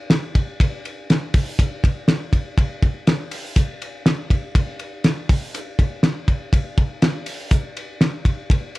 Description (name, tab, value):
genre	indie pop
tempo	122 BPM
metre	4/4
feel	straight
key	none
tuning	none
part	cloth-damped thuddy drum kit	drums	0.1-8.8 s	hi-hat, kick drum, ride cymbal, snare drum	-18 LUFS	equal	none
room	little or no reverb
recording	dark, warm production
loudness	-18 LUFS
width	side -19 dB against mid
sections	0.0-8.8 A section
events	none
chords	none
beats	0.11 0.60 1.09 | 1.59 2.08 2.57 3.07 | 3.56 4.05 4.55 5.04 | 5.54 6.03 6.52 7.02 | 7.51 8.01 8.50